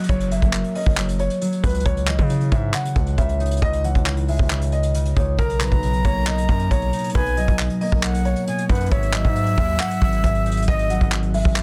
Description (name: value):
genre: hip hop, trap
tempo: 136 BPM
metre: 4/4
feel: half-time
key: C# dorian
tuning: A4 = 439 Hz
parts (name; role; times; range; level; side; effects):
- dark grand piano; melody; 0.0-11.6 s; A#4 to F#5; -30 LUFS; equal; none
- concert harp; accompaniment; 0.0-11.6 s; G#2 to F#5; -28 LUFS; equal; none
- soft brush drum kit; drums; 0.0-11.6 s; handclaps, hi-hat, kick drum; -24 LUFS; equal; none
- downlifter; sound effects; 0.0-1.9 s; none; -49 LUFS; equal; none
- distorted 808-style bass; bass; 0.1-11.6 s; F#1 to C#3; -25 LUFS; equal; distortion
- breathy concert flute; second line; 5.4-11.1 s; D#5 to A#5; -30 LUFS; equal; tape echo
room: small room ambience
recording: dense, heavily limited modern master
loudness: -20 LUFS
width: mono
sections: 0.0-11.6 A section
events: none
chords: 0.0 F#; 1.9 C#madd9; 5.4 Bmaj7; 8.9 G#5